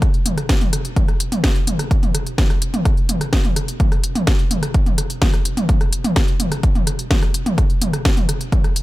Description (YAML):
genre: techno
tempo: 127 BPM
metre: 4/4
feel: straight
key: none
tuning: none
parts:
  - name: electronic kick drum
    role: drums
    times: 0.0-8.6 s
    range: none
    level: -17 LUFS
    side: equal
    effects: none
  - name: techno drum kit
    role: drums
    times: 0.0-8.8 s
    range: hi-hat, rim click, snare drum, toms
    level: -21 LUFS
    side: equal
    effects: sidechain pumping on hats, sidechain pumping on toms, sidechain pumping on cymbals
room: little or no reverb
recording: none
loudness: -16 LUFS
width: side -17 dB against mid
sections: 0.0-8.8 A section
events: none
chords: none